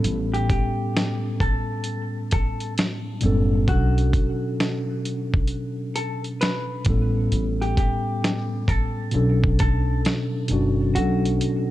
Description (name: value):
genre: lo-fi hip hop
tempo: 66 BPM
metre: 4/4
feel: swing 64% on 16ths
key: B minor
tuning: A4 = 442 Hz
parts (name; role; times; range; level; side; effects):
- mellow tine electric piano; accompaniment; 0.0-11.7 s; A2 to A4; -24 LUFS; equal; fast stereo tremolo, cassette tape, low-pass filter
- upright bass; bass; 0.0-11.4 s; F#1 to B1; -23 LUFS; equal; none
- dusty soul sampler-style drum kit; drums; 0.0-11.7 s; hi-hat, kick drum, snare drum; -23 LUFS; equal; overdrive
- vintage hollow-body jazz guitar; melody; 0.3-11.7 s; F#4 to B4; -31 LUFS; equal; low-pass filter, tape echo
room: little or no reverb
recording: cassette tape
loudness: -20 LUFS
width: side -15 dB against mid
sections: 0.0-11.0 A section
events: kick muted 11.0-11.7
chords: 0.0 A9; 3.7 Bm9; 6.9 A9; 9.1 Bm9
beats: | 0.04 0.95 1.86 2.77 | 3.68 4.59 5.50 6.41 | 7.32 8.22 9.13 10.04 | 10.95